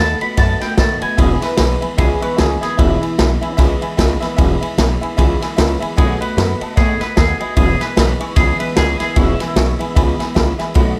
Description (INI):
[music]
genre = rockabilly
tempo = 150 BPM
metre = 4/4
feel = swing 59% on 8ths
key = E major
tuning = A4 = 440 Hz
[part]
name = twangy electric guitar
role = melody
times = 0.0-3.6, 6.0-9.9 s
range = E4 to B5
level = -24 LUFS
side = equal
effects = lush chorus, analog delay
[part]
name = honky-tonk upright piano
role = accompaniment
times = 0.0-10.9 s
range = D#5 to C#6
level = -29 LUFS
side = equal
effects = none
[part]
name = picked steel-string acoustic guitar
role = accompaniment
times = 0.0-11.0 s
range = E2 to F#4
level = -26 LUFS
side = equal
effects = none
[part]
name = upright bass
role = bass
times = 0.0-10.9 s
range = E1 to A2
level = -20 LUFS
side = equal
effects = none
[part]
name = vintage drum kit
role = drums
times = 0.2-10.9 s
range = kick drum, ride cymbal, snare drum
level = -19 LUFS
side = equal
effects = none
[sound]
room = little or no reverb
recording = none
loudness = -16 LUFS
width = mono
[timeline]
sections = 0.0-1.2 A section; 1.2-11.0 B section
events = none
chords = 0.0 B7; 1.2 E; 6.0 B7; 7.6 E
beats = 0.38 0.78 | 1.18 1.58 1.98 2.38 | 2.78 3.18 3.58 3.98 | 4.38 4.78 5.18 5.58 | 5.98 6.38 6.78 7.18 | 7.58 7.97 8.37 8.77 | 9.17 9.56 9.96 10.36 | 10.76